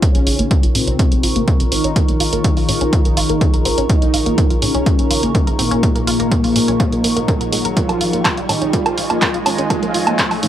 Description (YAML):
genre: melodic techno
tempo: 124 BPM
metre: 4/4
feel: straight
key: unclear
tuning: A4 = 440 Hz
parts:
  - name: mellow synth brass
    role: melody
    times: 0.0-10.5 s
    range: Bb2 to F4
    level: -20 LUFS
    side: equal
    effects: chorus, phaser, vintage 12-bit sampler grit, sidechain pumping, analog delay
  - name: dark analog pad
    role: sustained chords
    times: 0.0-10.5 s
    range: F4 to Db6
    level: -25 LUFS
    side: equal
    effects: chorus, phaser, sidechain pumping
  - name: tight sequenced synth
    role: arpeggios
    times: 0.0-10.5 s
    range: Ab3 to Bb4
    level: -24 LUFS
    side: equal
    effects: chorus, phaser, sidechain pumping, analog delay
  - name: electronic kick drum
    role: drums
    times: 0.0-10.3 s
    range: none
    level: -16 LUFS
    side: equal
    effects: none
  - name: punchy analog drum machine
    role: drums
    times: 0.0-10.5 s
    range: handclaps, hi-hat, woodblock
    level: -20 LUFS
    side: right 2 dB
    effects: sidechain pumping on hats, sidechain pumping on perc
  - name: riser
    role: sound effects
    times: 4.7-10.5 s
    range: none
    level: -29 LUFS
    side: equal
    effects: none
  - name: deep dark ambient pad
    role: texture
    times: 0.0-10.5 s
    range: Eb4 to Db6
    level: -27 LUFS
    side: right 1 dB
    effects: chorus, built-in reverb, sidechain pumping
  - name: tight sequencer bass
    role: bass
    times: 0.1-10.5 s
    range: Bb1 to Bb2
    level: -25 LUFS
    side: equal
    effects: tube saturation, sidechain pumping
room: little or no reverb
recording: dry, gritty hardware recording, high-pass filter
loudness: -13 LUFS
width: side -11 dB against mid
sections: 0.0-10.5 A section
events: build-up 0.0-10.5; filter sweep on synth arpeggio sound 0.0-10.5; filter sweep on analog polysynth 0.0-10.5; riser 4.7-10.5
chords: 0.0 Dbadd9/Bb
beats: | 0.03 0.51 0.99 1.48 | 1.96 2.44 2.93 3.41 | 3.90 4.38 4.86 5.35 | 5.83 6.32 6.80 7.28 | 7.77 8.25 8.73 9.22 | 9.70 10.19